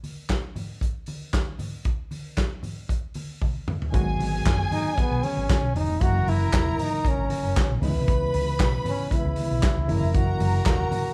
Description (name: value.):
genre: disco.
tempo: 116 BPM.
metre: 4/4.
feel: straight.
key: G# minor.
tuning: A4 = 440 Hz.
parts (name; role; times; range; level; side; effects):
warm soul drum kit; drums; 0.0-11.0 s; handclaps, hi-hat, kick drum, snare drum, toms; -28 LUFS; equal; none.
congas; percussion; 0.0-11.0 s; none; -37 LUFS; equal; none.
rich studio string section; second line; 3.9-11.1 s; G#4 to B5; -33 LUFS; equal; none.
overdriven reed electric piano; accompaniment; 3.9-11.1 s; C#3 to F#4; -33 LUFS; equal; fast tremolo.
hollow-body short-scale fingered electric bass; bass; 3.9-10.8 s; E1 to C#2; -29 LUFS; equal; none.
bright trombone; melody; 4.7-11.1 s; B3 to F#4; -31 LUFS; equal; none.
room: moderate large studio reverb, RT60 1.1 s.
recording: band playing live in one room.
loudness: -25 LUFS.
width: mono.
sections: 0.0-3.9 A section; 3.9-11.1 B section.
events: drum fill 3.4-3.9.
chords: 0.0 N.C.; 3.9 G#m7; 6.0 F#7; 7.8 C#m7; 9.9 F#7.